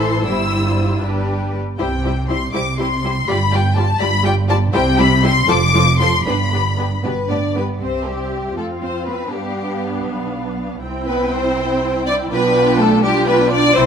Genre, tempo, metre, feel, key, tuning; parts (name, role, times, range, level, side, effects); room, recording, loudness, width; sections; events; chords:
quick classical-period movement for string orchestra; 80 BPM (dotted quarters); 6/8; rubato; C major; A4 = 439 Hz
dark symphonic violin section; melody; 0.0-13.8 s; E5 to E6; -21 LUFS; left 4 dB
warm symphonic violin section; second line; 0.0-13.9 s; E4 to D5; -21 LUFS; left 2 dB
warm symphonic viola section; accompaniment; 0.0-13.8 s; E3 to G4; -22 LUFS; right 1 dB
dark symphonic cello section; bass; 0.0-13.9 s; F2 to D4; -20 LUFS; right 2 dB
warm symphonic double bass section; bass; 0.0-13.8 s; F1 to G2; -24 LUFS; right 3 dB
moderate scoring stage reverb, RT60 1.8 s; close, detailed microphones; -15 LUFS; side -7 dB against mid
0.0-7.8 A section; 7.8-13.9 B section
0.2 C/G; 1.0 G; 1.8 C; 3.3 G5; 4.7 C; 5.5 F; 6.3 G; 7.8 C; 8.6 F5; 9.3 G7; 10.8 C; 12.3 G7/B